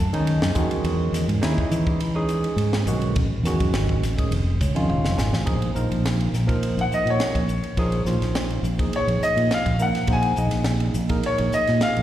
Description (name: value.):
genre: electric jazz fusion.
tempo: 104 BPM.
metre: 4/4.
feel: straight.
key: unclear.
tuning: A4 = 440 Hz.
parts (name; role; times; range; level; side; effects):
bright baby grand piano; melody; 0.0-0.5, 6.8-12.0 s; Db5 to A5; -24 LUFS; left 1 dB; slapback echo, tape echo.
fingered electric bass; bass; 0.0-12.0 s; Eb1 to E3; -22 LUFS; equal; none.
barky tine electric piano; accompaniment; 0.1-12.0 s; D#3 to G#5; -27 LUFS; right 2 dB; overdrive, phaser, slapback echo.
crisp fusion drum kit; drums; 0.1-12.0 s; hi-hat, kick drum, ride cymbal, snare drum, toms; -27 LUFS; equal; none.
room: little or no reverb.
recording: live gig heard through the venue's PA, recital hall reverb.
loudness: -20 LUFS.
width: side -12 dB against mid.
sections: 0.0-5.5 A section; 5.5-12.0 B section.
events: tine electric piano fill 4.3-5.5; drum fill 4.9-5.5; grand piano solo 5.5-12.0.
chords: 0.0 B13 (rootless); 0.6 Emaj9; 3.2 Amaj7; 4.3 Fm7b13; 5.5 Gbmaj13/Bb (rootless); 10.1 Absus2/Bb.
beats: 0.27 | 0.85 1.42 2.00 2.58 | 3.16 3.73 4.31 4.89 | 5.47 6.05 6.62 7.20 | 7.78 8.36 8.93 9.51 | 10.09 10.66 11.24 11.81.